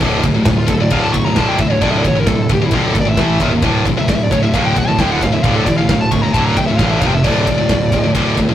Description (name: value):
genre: heavy metal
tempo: 133 BPM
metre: 4/4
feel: straight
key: D minor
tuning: A4 = 440 Hz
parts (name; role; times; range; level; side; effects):
- warm studio string section; sustained chords; 0.0-8.5 s; D3 to Eb5; -31 LUFS; left 1 dB; none
- heavy high-gain guitar; riff; 0.0-8.5 s; D2 to A3; -19 LUFS; left 6 dB; distortion
- high-gain distorted guitar; riff; 0.0-8.5 s; D2 to A3; -18 LUFS; right 4 dB; distortion
- fuzz fingered electric bass; bass; 0.0-8.5 s; D1 to A1; -20 LUFS; equal; overdrive
- modern studio drum kit; drums; 0.0-8.5 s; crash cymbal, kick drum, ride cymbal, snare drum; -18 LUFS; equal; none
- high-gain lead guitar; melody; 0.6-8.1 s; E4 to C#6; -20 LUFS; equal; distortion
room: moderate booth ambience, RT60 0.2 s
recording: rough rehearsal-room recording, tube saturation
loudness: -12 LUFS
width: side -11 dB against mid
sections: 0.0-8.5 A section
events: lead electric guitar solo 0.0-8.5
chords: 0.0 Dm; 3.2 A5; 3.4 Eb5; 3.6 Dm; 7.0 F5; 7.2 Dm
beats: | 0.02 0.47 0.92 1.38 | 1.83 2.28 2.73 3.18 | 3.63 4.08 4.54 4.99 | 5.44 5.89 6.34 6.80 | 7.25 7.70 8.15